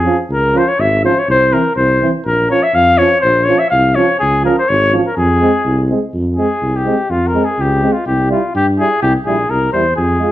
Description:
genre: balkan folk, Balkan brass band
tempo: 124 BPM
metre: 2/4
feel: straight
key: F harmonic minor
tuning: A4 = 440 Hz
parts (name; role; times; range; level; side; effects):
- clear flugelhorn; melody; 0.0-10.3 s; F4 to F5; -14 LUFS; left 2 dB; none
- warm trombone; accompaniment; 0.0-10.3 s; C4 to F4; -22 LUFS; left 3 dB; none
- mellow tuba; bass; 0.0-10.2 s; Ab1 to G2; -17 LUFS; equal; none
- clear euphonium; accompaniment; 0.1-10.3 s; E3 to Ab3; -19 LUFS; right 4 dB; none
room: moderate large studio reverb, RT60 0.8 s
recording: band playing live in one room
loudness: -11 LUFS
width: side -14 dB against mid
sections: 0.0-6.1 A section; 6.1-10.3 B section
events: speeding up 0.0-10.3; flugelhorn solo 6.1-10.3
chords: 0.3 Db; 1.3 C; 2.2 Bbm; 4.2 Db; 5.2 Fm; 8.1 C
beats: | 0.29 0.78 | 1.27 1.76 | 2.25 2.73 | 3.22 3.71 | 4.20 4.68 | 5.17 5.65 | 6.13 6.62 | 7.10 7.58 | 8.06 8.54 | 9.02 9.50 | 9.97

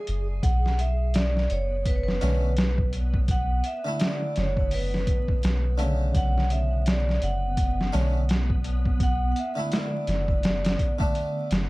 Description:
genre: trip hop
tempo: 84 BPM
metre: 4/4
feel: swing 59% on 16ths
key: B minor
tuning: A4 = 440 Hz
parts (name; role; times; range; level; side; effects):
- backwards swelling texture; texture; 0.0-11.7 s; B3 to G#4; -39 LUFS; right 1 dB; built-in reverb
- soft dub sub bass; bass; 0.1-11.7 s; F#1 to B1; -25 LUFS; equal; none
- trip hop sampler-style drum kit; drums; 0.1-11.7 s; hi-hat, kick drum, snare drum; -26 LUFS; equal; none
- vibraphone with hard mallets; melody; 0.4-11.5 s; B4 to F#5; -31 LUFS; right 1 dB; dub echo
- harpsichord; accompaniment; 2.2-11.7 s; C#3 to E4; -32 LUFS; equal; harmonic tremolo
room: digital ambience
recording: dark, warm production, vinyl crackle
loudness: -22 LUFS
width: side -20 dB against mid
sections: 0.0-11.7 A section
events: none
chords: 0.0 Bm7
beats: | 0.43 1.14 1.85 2.57 | 3.28 4.00 4.71 5.43 | 6.14 6.86 7.57 8.28 | 9.00 9.71 10.43 11.14

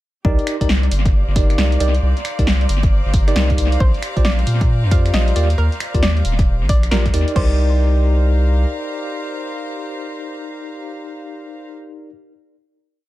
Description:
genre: UK garage, two-step garage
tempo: 135 BPM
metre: 4/4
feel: swing 63% on 16ths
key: C minor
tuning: A4 = 440 Hz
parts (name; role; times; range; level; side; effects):
- soft string machine; sustained chords; 0.2-7.4 s; D5; -33 LUFS; equal; ensemble chorus, sidechain pumping
- bell-like tine electric piano; stabs; 0.2-12.1 s; Eb4 to D5; -25 LUFS; equal; medium stereo tremolo, tape echo
- saturated sub bass; bass; 0.2-8.7 s; Eb1 to Bb2; -16 LUFS; equal; none
- electronic kick drum; drums; 0.2-7.5 s; none; -17 LUFS; equal; overdrive
- warm studio string section; texture; 0.2-11.7 s; G4 to Bb5; -31 LUFS; left 1 dB; sidechain pumping
- punchy analog drum machine; drums; 0.4-7.5 s; crash cymbal, finger snaps, hi-hat, snare drum; -23 LUFS; equal; tape echo
- hollow square pluck; melody; 3.8-12.1 s; Bb4 to F5; -28 LUFS; equal; chorus, analog delay
room: digital ambience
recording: echo-heavy mix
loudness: -14 LUFS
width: side -16 dB against mid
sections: 0.2-7.4 drop; 7.4-10.9 final chord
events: drop 0.2-7.4; band accent 6.9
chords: 0.2 Cm9; 3.8 Bb69; 5.4 Ebmaj7; 7.4 Cm9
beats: | 0.25 0.69 1.14 1.58 | 2.03 2.47 2.92 3.36 | 3.80 4.25 4.69 5.14 | 5.58 6.03 6.47 6.92 | 7.36 7.80 8.25 8.69 | 9.14 9.58 10.03 10.47

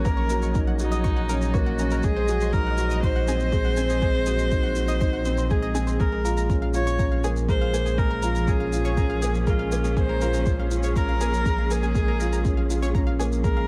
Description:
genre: piano and strings electronica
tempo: 121 BPM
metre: 4/4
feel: straight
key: Bb minor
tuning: A4 = 440 Hz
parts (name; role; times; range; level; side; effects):
- clear viola; melody; 0.0-13.7 s; Eb4 to Db5; -31 LUFS; equal; none
- dark string quartet; sustained chords; 0.0-13.7 s; Bb2 to Eb5; -36 LUFS; equal; sidechain pumping
- analog pluck; arpeggios; 0.0-13.6 s; Ab4 to Db6; -38 LUFS; equal; chorus, sidechain pumping, digital delay
- felt-muted upright piano; riff; 0.0-13.7 s; Ab3 to Gb4; -31 LUFS; equal; none
- warm sub bass; bass; 0.0-13.7 s; Bb1; -28 LUFS; equal; sidechain pumping
- electronic kick drum; drums; 0.1-13.5 s; none; -27 LUFS; equal; none
- shaker; drums; 0.1-13.5 s; none; -43 LUFS; equal; none
room: studio reverb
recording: none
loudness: -23 LUFS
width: mono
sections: 0.0-13.7 A section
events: none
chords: 0.0 Gb6/Bb; 2.0 Ab7/Bb; 6.0 Bbm7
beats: | 0.06 0.55 1.05 1.54 | 2.04 2.53 3.03 3.53 | 4.02 4.52 5.01 5.51 | 6.00 6.50 7.00 7.49 | 7.99 8.48 8.98 9.48 | 9.97 10.47 10.96 11.46 | 11.96 12.45 12.95 13.44

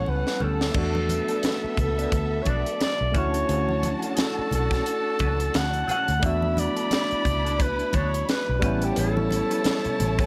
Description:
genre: lush 1970s-style soul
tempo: 88 BPM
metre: 4/4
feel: swing 58% on 16ths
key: unclear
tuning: A4 = 440 Hz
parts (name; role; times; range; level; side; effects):
- breathy alto saxophone; melody; 0.0-10.3 s; G4 to F#5; -30 LUFS; equal; none
- warm symphonic violin section; second line; 0.0-10.3 s; B3 to B5; -36 LUFS; equal; none
- barky tine electric piano; accompaniment; 0.0-10.3 s; G3 to F#4; -33 LUFS; equal; overdrive
- vintage muted fingered electric bass; bass; 0.0-10.3 s; A1 to E2; -29 LUFS; equal; none
- congas; percussion; 0.1-10.2 s; none; -38 LUFS; equal; none
- electric guitar through a small old amp; riff; 0.3-10.3 s; B3 to B4; -40 LUFS; equal; wah
- tight funk drum kit; drums; 0.3-10.3 s; crash cymbal, hi-hat, kick drum, snare drum; -30 LUFS; equal; none
room: light reverb, small room ambience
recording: none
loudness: -24 LUFS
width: mono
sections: 0.7-10.3 A section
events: drum fill 0.1-0.7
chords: 0.0 A7; 0.7 E7sus4; 8.6 A9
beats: 0.06 | 0.74 1.43 2.12 2.80 | 3.49 4.17 4.86 5.54 | 6.23 6.91 7.60 8.28 | 8.97 9.65

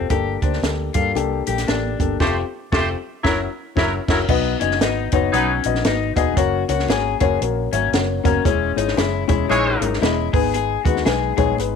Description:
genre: uptempo 1960s-style soul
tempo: 115 BPM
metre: 4/4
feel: swing 61% on 8ths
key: B major from 4.3 s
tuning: A4 = 441 Hz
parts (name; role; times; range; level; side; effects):
- dark upright piano; accompaniment; 0.0-11.8 s; G#3 to A#5; -22 LUFS; left 12 dB; none
- electric guitar at the edge of break-up; riff; 0.0-11.5 s; B3 to G#4; -25 LUFS; left 11 dB; warbly pitch drift
- vintage muted fingered electric bass; bass; 0.0-11.8 s; E1 to G2; -25 LUFS; right 2 dB; none
- compact cocktail drum kit; drums; 0.1-11.7 s; crash cymbal, hi-hat, kick drum, snare drum; -22 LUFS; right 2 dB; none
- congas; percussion; 0.1-11.7 s; none; -32 LUFS; right 17 dB; none
- warm horn section; second line; 2.2-5.5, 9.5-9.9 s; E3 to C#5; -22 LUFS; right 1 dB; slapback echo
room: small room ambience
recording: 1960s-style stereo with parts hard left and right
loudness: -17 LUFS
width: side -6 dB against mid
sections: 0.0-4.3 A section; 4.3-11.8 B section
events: band accent 2.2-4.3; upright piano fill 7.4-8.5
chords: 0.1 Gmadd9; 2.2 Fadd9; 3.2 Gb7; 4.3 B; 6.4 F#; 8.5 C#m/E; 10.3 G#m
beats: | 0.11 0.63 1.15 1.68 | 2.20 2.72 3.24 3.77 | 4.29 4.81 5.33 5.85 | 6.37 6.89 7.41 7.94 | 8.46 8.98 9.50 10.02 | 10.54 11.06 11.59

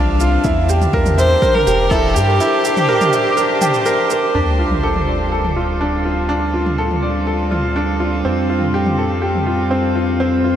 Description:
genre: piano and strings electronica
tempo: 123 BPM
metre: 4/4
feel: straight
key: D minor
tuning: A4 = 440 Hz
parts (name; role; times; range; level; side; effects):
- rich string quartet; sustained chords; 0.0-10.6 s; G3 to A5; -21 LUFS; right 2 dB; sidechain pumping
- bright baby grand piano; riff; 0.0-10.6 s; C4 to G5; -18 LUFS; equal; tape echo
- round analog bass; bass; 0.0-10.6 s; E1 to G2; -20 LUFS; equal; sidechain pumping
- electronic shaker and toms; drums; 0.2-9.4 s; none; -26 LUFS; right 1 dB; overdrive
- electronic kick drum; drums; 0.4-2.0 s; none; -20 LUFS; equal; overdrive
- rich violin; melody; 1.2-4.1 s; G4 to C5; -20 LUFS; left 1 dB; tape echo
- sub drop; sound effects; 4.4-6.3 s; none; -23 LUFS; equal; none
room: wet huge ambient reverb, RT60 7.6 s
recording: dreamy mix soaked in reverb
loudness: -14 LUFS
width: side -10 dB against mid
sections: 0.0-4.3 A section; 4.3-10.6 B section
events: impact 4.3-6.3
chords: 0.4 Edim; 4.3 Dm; 8.3 Fadd9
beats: | 0.45 0.94 1.42 1.91 | 2.40 2.89 3.38 3.86 | 4.35 4.84 5.33 5.81 | 6.30 6.79 7.28 7.76 | 8.25 8.74 9.23 9.72 | 10.20

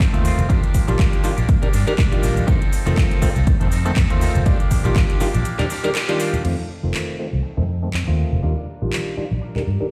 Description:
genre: filtered disco house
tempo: 121 BPM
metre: 4/4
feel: swing 56% on 16ths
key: F mixolydian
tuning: A4 = 440 Hz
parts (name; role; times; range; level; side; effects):
- electric guitar with an envelope filter; riff; 0.0-9.9 s; Eb3 to Bb4; -32 LUFS; equal; vintage 12-bit sampler grit, sidechain pumping, low-pass filter
- fingered electric bass; bass; 0.0-9.8 s; F1 to G2; -23 LUFS; equal; sidechain pumping, low-pass filter
- electronic kick drum; drums; 0.0-5.1 s; none; -20 LUFS; equal; overdrive
- house drum kit; drums; 0.0-9.7 s; cabasa, crash cymbal, handclaps, hi-hat; -32 LUFS; equal; overdrive, sidechain pumping on hats, sidechain pumping on perc, sidechain pumping on cymbals
- tambourine and congas; percussion; 0.0-9.9 s; none; -31 LUFS; equal; none
- clav; accompaniment; 0.1-9.9 s; Eb3 to Bb4; -27 LUFS; equal; phaser, sidechain pumping, low-pass filter
room: light reverb, digital ambience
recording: played on a big sound system in a bare room, stone room reverb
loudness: -19 LUFS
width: mono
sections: 0.0-6.4 A section; 6.4-9.9 B section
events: break 5.5-6.4; band accent 6.0; filter sweep 6.4-9.9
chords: 0.5 Ebmaj9; 2.5 F7; 4.5 Ebmaj9; 6.4 F7; 8.4 Ebmaj9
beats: 0.00 | 0.50 0.99 1.49 1.98 | 2.48 2.98 3.47 3.97 | 4.46 4.96 5.46 5.95 | 6.45 6.94 7.44 7.93 | 8.43 8.93 9.42

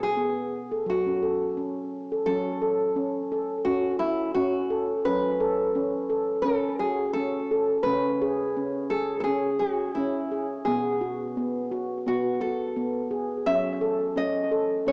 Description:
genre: world meditative, meditative tuned percussion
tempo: 86 BPM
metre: 4/4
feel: swing 56% on 16ths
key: F# dorian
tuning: A4 = 440 Hz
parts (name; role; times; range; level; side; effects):
- nylon-string guitar; melody; 0.0-14.9 s; E4 to E5; -27 LUFS; equal; cassette tape, analog delay
- handpan; arpeggios; 0.0-14.9 s; B2 to A4; -26 LUFS; equal; cassette tape, analog delay
room: wet spring reverb, RT60 1.1 s, small room ambience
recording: home recording on cassette, small speaker sound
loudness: -24 LUFS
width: side -35 dB against mid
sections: 0.0-2.3 A section; 2.3-14.9 B section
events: none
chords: 0.0 G#m/B; 0.9 F#m; 7.9 C#5; 10.7 B5; 13.5 F#m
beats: 0.17 0.87 1.57 | 2.27 2.97 3.67 4.37 | 5.07 5.76 6.46 7.16 | 7.86 8.56 9.26 9.96 | 10.66 11.36 12.06 12.77 | 13.47 14.17 14.87

